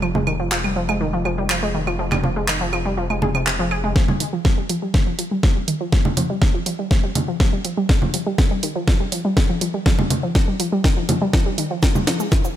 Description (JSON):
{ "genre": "melodic techno", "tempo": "122 BPM", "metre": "4/4", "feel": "straight", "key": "unclear", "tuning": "A4 = 440 Hz", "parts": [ { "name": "wide unison pluck", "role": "arpeggios", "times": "0.0-12.5 s", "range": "C3 to Ab4", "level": "-23 LUFS", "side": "equal", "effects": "sidechain pumping, ping-pong delay" }, { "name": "gritty driven synth bass", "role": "bass", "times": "0.0-3.9 s", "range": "F1", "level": "-26 LUFS", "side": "equal", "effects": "sidechain pumping" }, { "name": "house drum kit", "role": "drums", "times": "0.0-12.5 s", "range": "claves, congas, handclaps, hi-hat, shaker, snare drum", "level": "-23 LUFS", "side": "right 1 dB", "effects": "sidechain pumping on perc, sidechain pumping on hats" }, { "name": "electronic kick drum", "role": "drums", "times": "4.0-12.4 s", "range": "none", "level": "-17 LUFS", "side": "equal", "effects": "none" } ], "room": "little or no reverb", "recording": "none", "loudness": "-17 LUFS", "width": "side -11 dB against mid", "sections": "0.0-4.0 A section; 4.0-12.6 B section", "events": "filter sweep on synth arpeggio sound 0.0-4.0, 4.0-12.6; build-up 4.0-12.6; drum fill 4.0-12.6", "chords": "0.0 Fm; 4.0 Eb; 11.8 Fm" }